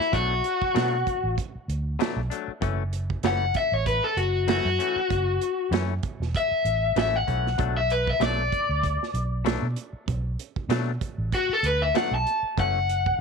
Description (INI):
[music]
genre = straight-eighth soul blues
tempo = 96 BPM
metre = 4/4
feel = swing 56% on 16ths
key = unclear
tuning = A4 = 438 Hz
[part]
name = overdriven semi-hollow guitar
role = melody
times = 0.0-13.2 s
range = E4 to A5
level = -24 LUFS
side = left 3 dB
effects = none
[part]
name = direct-recorded clean electric guitar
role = stabs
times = 0.0-12.8 s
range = F#2 to D4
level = -32 LUFS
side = left 14 dB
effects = none
[part]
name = warm soul drum kit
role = drums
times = 0.0-13.2 s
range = hi-hat, kick drum, snare drum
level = -30 LUFS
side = right 7 dB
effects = none
[part]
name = vintage muted fingered electric bass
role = bass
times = 0.1-13.2 s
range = E1 to B2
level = -28 LUFS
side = right 1 dB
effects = none
[sound]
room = small room ambience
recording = 1960s-style stereo with parts hard left and right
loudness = -23 LUFS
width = side -5 dB against mid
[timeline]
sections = 0.0-13.2 A section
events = overdriven electric guitar solo 0.0-13.2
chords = 0.1 Bm7; 2.6 F#m7; 7.6 Bm7; 12.6 F#m7